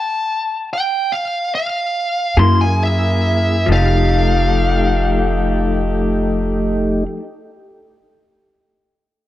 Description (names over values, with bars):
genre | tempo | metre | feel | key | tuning
blues | 45-49 BPM (dotted quarters) | 12/8 | straight | F mixolydian | A4 = 440 Hz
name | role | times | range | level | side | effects
smooth overdriven lead guitar | melody | 0.0-7.1 s | Fb5 to C6 | -19 LUFS | equal | none
electric guitar through a small old amp | accompaniment | 2.4-7.2 s | F3 to Ab4 | -20 LUFS | left 5 dB | harmonic tremolo
mellow saxophone section | sustained chords | 2.4-7.0 s | A3 to Ab4 | -27 LUFS | left 1 dB | none
tonewheel organ | sustained chords | 2.4-7.0 s | A3 to Ab4 | -22 LUFS | right 1 dB | slow rotary speaker
upright bass | bass | 2.4-7.0 s | F1 to Gb2 | -17 LUFS | equal | none
room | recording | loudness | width
light reverb, small room ambience | dark, warm production | -14 LUFS | side -13 dB against mid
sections
0.0-3.7 A section; 3.7-9.0 B section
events
slowing down 0.0-3.7; lead electric guitar solo 0.0-3.7; stop 0.0-2.4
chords
0.0 F; 2.4 Gb9; 3.7 F9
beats
1.11 2.38 | 3.69 5.02 6.35